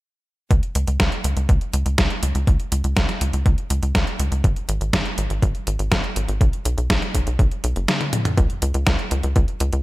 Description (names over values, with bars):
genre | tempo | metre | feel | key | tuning
italo disco | 122 BPM | 4/4 | straight | unclear | A4 = 440 Hz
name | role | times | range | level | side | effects
tight sequencer bass | bass | 0.5-9.8 s | F#1 to C#2 | -21 LUFS | equal | none
detuned 8-bit digital drum machine | drums | 0.5-9.8 s | hi-hat, snare drum, toms | -24 LUFS | equal | gated reverb
electronic kick drum | drums | 0.5-9.5 s | none | -20 LUFS | equal | overdrive
room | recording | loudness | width
little or no reverb | none | -18 LUFS | side -18 dB against mid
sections
0.5-8.4 A section; 8.4-9.8 B section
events
drum fill 7.9-8.4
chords
none